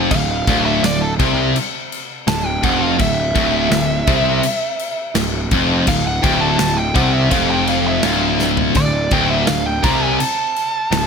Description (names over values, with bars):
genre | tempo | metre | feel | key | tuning
heavy metal | 83 BPM | 4/4 | straight | D minor | A4 = 440 Hz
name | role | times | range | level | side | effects
high-gain distorted guitar | riff | 0.0-11.1 s | D2 to C3 | -18 LUFS | left 1 dB | distortion
fuzz picked electric bass | bass | 0.0-11.1 s | D1 to C2 | -22 LUFS | equal | overdrive
nasal lead guitar with a parked wah | melody | 0.1-11.1 s | A4 to Bb5 | -21 LUFS | right 2 dB | overdrive
modern studio drum kit | drums | 0.1-11.1 s | crash cymbal, kick drum, snare drum, toms | -21 LUFS | equal | none
room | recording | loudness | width
light reverb, small room ambience | bright 1980s-style digital production | -14 LUFS | side -6 dB against mid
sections
0.0-11.1 A section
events
lead electric guitar solo 0.0-11.1; drum fill 8.4-8.8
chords
0.0 Dm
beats
| 0.11 0.83 1.56 2.28 | 3.00 3.72 4.44 5.16 | 5.88 6.60 7.32 8.04 | 8.76 9.48 10.20 10.92